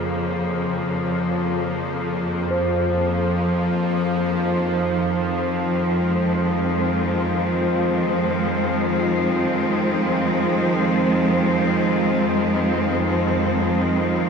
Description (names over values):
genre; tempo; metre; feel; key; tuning
dark ambient drone; free time; none; none; F minor; A4 = 442 Hz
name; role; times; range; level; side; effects
clear studio cello section; sustained chords; 0.0-14.3 s; F2 to C4; -22 LUFS; equal; none
bowed-like drone; drone; 0.0-14.3 s; F2 to F3; -22 LUFS; equal; built-in reverb
bronze singing bowl; texture; 0.0-14.3 s; Ab4 to C5; -31 LUFS; right 3 dB; none
room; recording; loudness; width
wet plate reverb, RT60 2.5 s; dreamy mix soaked in reverb; -19 LUFS; side -6 dB against mid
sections
0.0-2.5 A section; 2.5-14.3 B section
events
fade-out on singing bowl 2.5-14.3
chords
0.0 Bbm7/F; 2.5 Fm